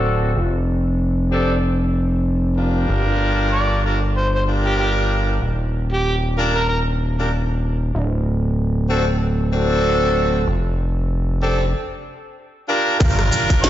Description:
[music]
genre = glitch hop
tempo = 95 BPM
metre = 4/4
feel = swing 57% on 16ths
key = G minor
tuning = A4 = 438 Hz
[part]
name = bright horn section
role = stabs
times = 0.0-13.7 s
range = C4 to Bb4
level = -22 LUFS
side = equal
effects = sidechain pumping, low-pass filter, dub echo
[part]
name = gritty driven synth bass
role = bass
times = 0.0-13.7 s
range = D1 to G1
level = -19 LUFS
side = equal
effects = none
[part]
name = overdriven harmonica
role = melody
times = 3.5-6.8, 13.6-13.7 s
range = G4 to D5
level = -24 LUFS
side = right 1 dB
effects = dub echo
[part]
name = electronic kick drum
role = drums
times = 13.0-13.6 s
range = none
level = -15 LUFS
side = equal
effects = small room ambience
[part]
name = glitchy drum kit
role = drums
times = 13.0-13.7 s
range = crash cymbal, hi-hat, rim click, shaker, snare drum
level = -22 LUFS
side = equal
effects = overdrive, small room ambience
[part]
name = impact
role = sound effects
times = 13.1-13.7 s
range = none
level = -23 LUFS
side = equal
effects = none
[sound]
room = light reverb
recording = played on a big sound system in a bare room, stone room reverb, nothing above 7.7 kHz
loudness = -17 LUFS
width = side -12 dB against mid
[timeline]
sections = 0.0-13.0 A section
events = break 11.7-13.0; impact 13.0-13.7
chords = 0.4 F5; 2.9 Gm7; 5.4 Ebmaj7; 7.9 D7; 10.5 F5; 13.0 Gm7

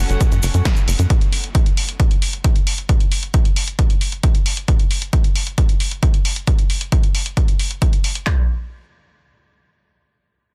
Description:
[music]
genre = uplifting trance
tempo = 134 BPM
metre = 4/4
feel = straight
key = F# minor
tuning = A4 = 440 Hz
[part]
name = rich chamber string section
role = sustained chords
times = 0.0-1.1 s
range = F#3 to F#5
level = -33 LUFS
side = equal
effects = sidechain pumping, low-pass filter
[part]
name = tight sequencer bass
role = bass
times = 0.0-1.1 s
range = F#1 to F#2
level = -19 LUFS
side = equal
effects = sidechain pumping
[part]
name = punchy analog drum machine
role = drums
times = 0.1-8.2 s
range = hi-hat, snare drum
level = -27 LUFS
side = equal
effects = none
[part]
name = cabasa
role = percussion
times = 0.1-1.1 s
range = none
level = -33 LUFS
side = equal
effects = none
[part]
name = punchy analog drum machine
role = drums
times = 0.2-8.4 s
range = handclaps, kick drum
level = -18 LUFS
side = equal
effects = none
[sound]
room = little or no reverb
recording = dense, heavily limited modern master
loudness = -18 LUFS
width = mono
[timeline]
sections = 0.0-8.3 A section; 8.3-10.5 B section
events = none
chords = 0.0 F#m; 1.1 N.C.

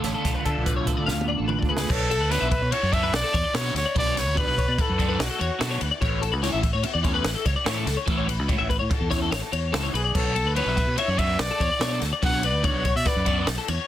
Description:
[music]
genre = math rock and midwest emo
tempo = 145 BPM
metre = 5/4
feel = straight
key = unclear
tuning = A4 = 440 Hz
[part]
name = twelve-string electric guitar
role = accompaniment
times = 0.0-1.9 s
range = A2 to A4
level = -32 LUFS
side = right 6 dB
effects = tremolo
[part]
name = twelve-string electric guitar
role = arpeggios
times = 0.0-13.9 s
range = A4 to F#5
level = -28 LUFS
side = left 6 dB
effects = ensemble chorus
[part]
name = crunchy overdriven guitar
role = riff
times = 0.0-13.7 s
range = B2 to F#4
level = -31 LUFS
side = right 1 dB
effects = phaser
[part]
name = fingered electric bass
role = bass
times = 0.0-13.8 s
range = A1 to D3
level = -27 LUFS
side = equal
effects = none
[part]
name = compact cocktail drum kit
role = drums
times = 0.0-13.8 s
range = crash cymbal, hi-hat, kick drum, ride cymbal, snare drum, toms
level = -27 LUFS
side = equal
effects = soft clipping on snare
[part]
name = clear trumpet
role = melody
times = 1.7-5.8, 10.0-13.5 s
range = F#4 to F#5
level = -27 LUFS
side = equal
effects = none
[sound]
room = light reverb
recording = dense, heavily limited modern master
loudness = -21 LUFS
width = side -12 dB against mid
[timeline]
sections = 0.0-1.9 A section; 1.9-13.9 B section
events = drum fill 1.1-1.9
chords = 0.0 Dm6; 1.9 Bm9; 6.0 Aadd9; 10.1 Bm11

